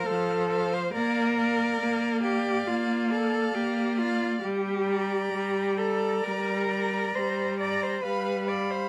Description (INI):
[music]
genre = classical, slow romantic movement for string quartet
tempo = 68 BPM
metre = 4/4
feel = rubato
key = Bb major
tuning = A4 = 442 Hz
[part]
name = warm violin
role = melody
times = 0.0-8.9 s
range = F5 to B5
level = -40 LUFS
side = equal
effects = none
[part]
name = rich violin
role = second line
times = 0.0-8.9 s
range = C5 to F5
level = -37 LUFS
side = equal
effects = none
[part]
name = rich cello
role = bass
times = 0.0-8.9 s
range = F4 to D5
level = -31 LUFS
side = equal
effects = none
[part]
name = rich viola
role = accompaniment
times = 0.1-8.8 s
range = F3 to Bb3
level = -31 LUFS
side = equal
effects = none
[sound]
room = light reverb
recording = close, detailed microphones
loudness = -27 LUFS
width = mono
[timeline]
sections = 0.0-8.9 A section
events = none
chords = 0.0 F; 0.9 Bb; 4.4 Gm; 8.0 G7